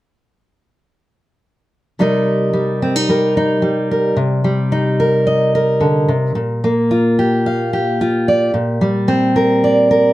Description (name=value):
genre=folk, solo fingerstyle acoustic guitar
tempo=110 BPM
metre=4/4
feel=straight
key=unclear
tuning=A4 = 439 Hz
part: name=fingerpicked steel-string acoustic guitar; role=solo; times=2.0-10.1 s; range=Bb2 to F5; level=-13 LUFS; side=equal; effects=none
room=moderate studio reverb, RT60 0.8 s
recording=none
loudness=-13 LUFS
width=side -16 dB against mid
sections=2.0-4.2 A section; 4.2-10.1 B section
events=none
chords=2.0 Cm7; 6.4 Bb5; 8.5 Gm/Bb